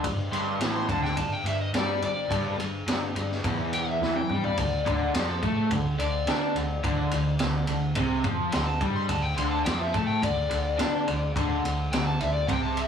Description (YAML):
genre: blues rock power trio and southern rock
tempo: 106 BPM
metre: 4/4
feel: straight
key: unclear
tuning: A4 = 440 Hz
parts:
  - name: raw garage guitar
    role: riff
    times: 0.0-12.9 s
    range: E2 to D4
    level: -28 LUFS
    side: equal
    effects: overdrive
  - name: vintage muted fingered electric bass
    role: bass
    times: 0.0-12.9 s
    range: E1 to D3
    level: -32 LUFS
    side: equal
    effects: none
  - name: vintage drum kit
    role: drums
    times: 0.0-12.9 s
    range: kick drum, ride cymbal, snare drum, toms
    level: -30 LUFS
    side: equal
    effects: none
  - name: overdriven slide guitar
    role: melody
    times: 0.3-12.9 s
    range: A4 to C6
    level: -31 LUFS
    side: left 2 dB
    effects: none
room: moderate small room ambience, RT60 0.5 s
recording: rough rehearsal-room recording, tube saturation, small room ambience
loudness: -24 LUFS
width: side -7 dB against mid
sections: 0.0-12.9 A section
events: electric slide guitar solo 0.0-12.9; drum fill 4.0-4.6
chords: 0.0 G5; 4.6 D5